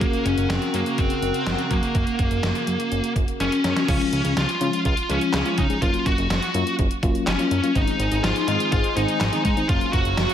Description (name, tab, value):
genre	synth-pop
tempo	124 BPM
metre	4/4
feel	straight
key	unclear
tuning	A4 = 438 Hz
part	smooth overdriven lead guitar	melody	0.0-10.3 s	Bb3 to Gb4	-24 LUFS	left 1 dB	slapback echo, digital delay
part	phased analog pad	sustained chords	0.0-3.8, 7.8-10.3 s	Db3 to Bb5	-28 LUFS	left 1 dB	phaser, chorus
part	fat analog bass	bass	0.0-10.3 s	Gb1 to Db3	-26 LUFS	equal	none
part	detuned 8-bit digital drum machine	drums	0.0-10.3 s	crash cymbal, handclaps, hi-hat, kick drum, snare drum	-25 LUFS	equal	overdrive
part	FM electric piano with auto-pan	accompaniment	3.9-10.2 s	Eb3 to Ab4	-26 LUFS	left 2 dB	slapback echo
room	wet recital hall reverb, RT60 1.6 s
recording	big arena sound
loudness	-19 LUFS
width	side -10 dB against mid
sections	0.0-3.9 A section; 3.9-10.3 B section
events	drum fill 3.4-3.9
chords	0.0 Gb; 3.9 Db; 5.8 Gbmaj7; 7.8 Ab; 9.7 Gbmaj7